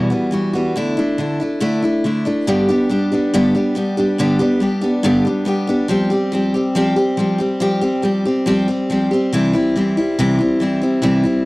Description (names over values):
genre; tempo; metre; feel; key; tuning
rock; 140 BPM; 4/4; straight; G mixolydian; A4 = 439 Hz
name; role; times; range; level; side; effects
picked steel-string acoustic guitar; solo; 0.0-11.5 s; E2 to G4; -15 LUFS; equal; none
room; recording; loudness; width
little or no reverb; dry, close 1970s-style studio recording; -15 LUFS; side -22 dB against mid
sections
0.0-2.5 A section; 2.5-11.5 B section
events
none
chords
0.0 Emadd9; 0.8 Dsus2; 2.5 G; 5.9 Fsus2; 9.3 C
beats
0.34 | 0.77 1.20 1.62 2.05 | 2.48 2.91 3.34 3.77 | 4.19 4.62 5.05 5.48 | 5.90 6.33 6.76 7.19 | 7.62 8.04 8.47 8.90 | 9.33 9.75 10.18 10.61 | 11.04